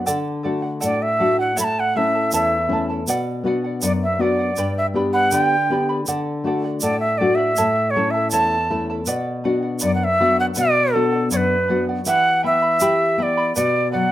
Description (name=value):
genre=andean folk, Andean ensemble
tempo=80 BPM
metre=2/4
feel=straight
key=B minor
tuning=A4 = 442 Hz
part: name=charango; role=accompaniment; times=0.0-14.1 s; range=E4 to B5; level=-27 LUFS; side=right 2 dB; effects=plate reverb
part: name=nylon-string guitar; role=accompaniment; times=0.0-14.1 s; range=E2 to G4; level=-22 LUFS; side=left 2 dB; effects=plate reverb
part: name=egg shaker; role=percussion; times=0.1-13.7 s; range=none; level=-26 LUFS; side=right 4 dB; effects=none
part: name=reedy quena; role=melody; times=0.8-14.1 s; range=A4 to B5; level=-18 LUFS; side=right 1 dB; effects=plate reverb
room=moderate studio reverb, RT60 0.6 s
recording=rough home demo mix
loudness=-17 LUFS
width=side -13 dB against mid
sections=0.1-12.1 A section; 12.1-14.1 B section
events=none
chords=0.1 D; 1.6 A; 3.1 Bm; 4.6 G; 6.1 D; 7.6 A; 9.1 Bm; 12.1 Em; 13.6 Bm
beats=| 0.08 0.83 | 1.58 2.33 | 3.08 3.83 | 4.57 5.32 | 6.07 6.82 | 7.57 8.32 | 9.07 9.82 | 10.56 11.31 | 12.06 12.81 | 13.56